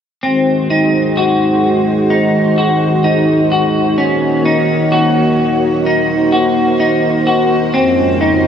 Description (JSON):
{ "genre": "dream pop", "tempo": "64 BPM", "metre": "4/4", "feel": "straight", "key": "unclear", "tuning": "A4 = 445 Hz", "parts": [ { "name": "string machine, full ensemble", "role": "sustained chords", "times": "0.2-8.5 s", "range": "F2 to Db5", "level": "-14 LUFS", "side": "equal", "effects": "ensemble chorus" }, { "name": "clean electric guitar", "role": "arpeggios", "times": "0.2-8.5 s", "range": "C4 to Gb4", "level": "-13 LUFS", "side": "left 1 dB", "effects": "analog chorus, tape echo" } ], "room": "wet huge ambient reverb, RT60 8.2 s", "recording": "dreamy mix soaked in reverb", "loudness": "-11 LUFS", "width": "side -8 dB against mid", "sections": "0.2-8.5 A section", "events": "none", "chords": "0.2 Ab7; 4.0 Gb6; 7.7 Dbmaj7/F" }